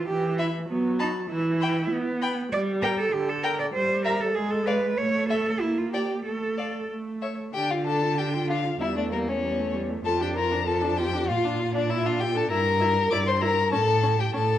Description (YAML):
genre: quick classical-period movement for string quartet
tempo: 97 BPM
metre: 2/4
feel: rubato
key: D minor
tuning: A4 = 440 Hz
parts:
  - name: clear cello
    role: bass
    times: 0.0-14.6 s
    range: E2 to D5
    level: -27 LUFS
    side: right 2 dB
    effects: none
  - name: warm viola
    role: accompaniment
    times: 0.1-14.4 s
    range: D3 to F4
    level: -29 LUFS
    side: right 1 dB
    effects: none
  - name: rich violin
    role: melody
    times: 0.4-14.6 s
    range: Bb4 to D6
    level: -29 LUFS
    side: left 7 dB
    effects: none
  - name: rich violin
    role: second line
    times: 0.4-14.6 s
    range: Bb3 to A5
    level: -29 LUFS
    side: left 2 dB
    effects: none
room: moderate recital hall reverb, RT60 1.3 s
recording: worn, warbling old tape, cassette tape, warbly pitch drift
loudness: -23 LUFS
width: side -11 dB against mid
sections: 0.0-7.6 A section; 7.6-14.6 B section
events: none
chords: 0.1 Em; 0.7 B7/F#; 1.3 Em; 2.5 Gm; 3.7 Edim/G; 4.4 G#dim7; 5.0 A; 5.6 Gm/Bb; 6.3 Dm/A; 7.6 Dm; 8.8 A5/E; 10.1 Dm/F; 11.3 Bb; 12.5 Edim/G; 13.7 A